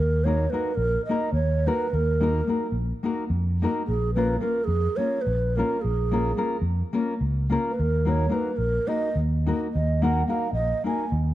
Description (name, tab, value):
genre	balkan folk, Balkan wedding band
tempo	215 BPM (eighths)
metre	7/8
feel	straight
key	Eb minor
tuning	A4 = 439 Hz
part	breathy mellow low ney	melody	0.0-11.1 s	Ab4 to Ab5	-27 LUFS	right 3 dB	none
part	fingered electric bass	bass	0.0-11.3 s	Bb1 to F2	-24 LUFS	equal	none
part	nylon-string guitar	accompaniment	0.3-11.0 s	Bb3 to Bb4	-27 LUFS	left 3 dB	none
room	light reverb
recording	dark, warm production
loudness	-22 LUFS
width	side -14 dB against mid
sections	0.0-11.3 A section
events	none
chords	0.0 Ebm; 3.9 Bbm; 7.8 Ebm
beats	0.25 0.53 0.81 1.08 1.36 1.64 | 1.92 2.20 2.48 2.76 3.04 3.32 3.60 | 3.88 4.16 4.44 4.71 4.99 5.27 5.55 | 5.83 6.11 6.39 6.67 6.95 7.23 7.51 | 7.79 8.06 8.34 8.62 8.90 9.18 9.46 | 9.74 10.02 10.29 10.57 10.85 11.13